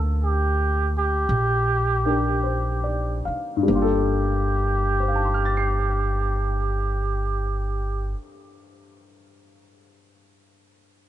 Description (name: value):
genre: jazz ballad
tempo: 46-60 BPM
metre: 4/4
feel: swing 69% on 8ths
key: G minor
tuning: A4 = 441 Hz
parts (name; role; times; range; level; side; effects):
- warm baby grand piano; accompaniment; 0.0-11.1 s; G2 to C7; -26 LUFS; left 3 dB; none
- upright bass; bass; 0.0-8.1 s; G1 to D2; -24 LUFS; equal; none
- trumpet with cup mute; melody; 0.2-8.2 s; G4; -26 LUFS; right 2 dB; none
room: little or no reverb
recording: nothing above 10.5 kHz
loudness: -21 LUFS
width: side -12 dB against mid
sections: 0.0-3.7 A section; 3.7-8.9 B section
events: slowing down 0.0-3.7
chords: 0.0 Gm9